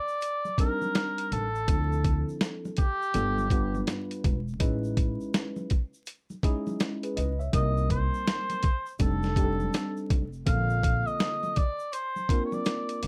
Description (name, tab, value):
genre	hip hop, jazz-hop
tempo	82 BPM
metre	4/4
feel	swing 62% on 16ths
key	C dorian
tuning	A4 = 440 Hz
part	mellow oboe	melody	0.0-13.0 s	G4 to F5	-33 LUFS	equal	plate reverb
part	tube shaker and congas	percussion	0.1-13.1 s	none	-43 LUFS	equal	none
part	boom bap sampler-style drum kit	drums	0.2-13.1 s	hi-hat, kick drum, snare drum	-29 LUFS	equal	none
part	tine electric piano	accompaniment	0.6-13.1 s	D3 to E5	-35 LUFS	equal	lush chorus, plate reverb
part	upright bass	bass	1.3-13.1 s	E1 to D2	-32 LUFS	equal	none
room	light reverb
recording	dark, warm production, vinyl crackle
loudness	-28 LUFS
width	mono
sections	0.0-13.1 A section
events	none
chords	0.0 Cm9; 1.7 Dm7; 3.1 G9; 4.6 Amaj9#11; 7.5 Cm7; 9.0 F13; 10.5 Bbmaj9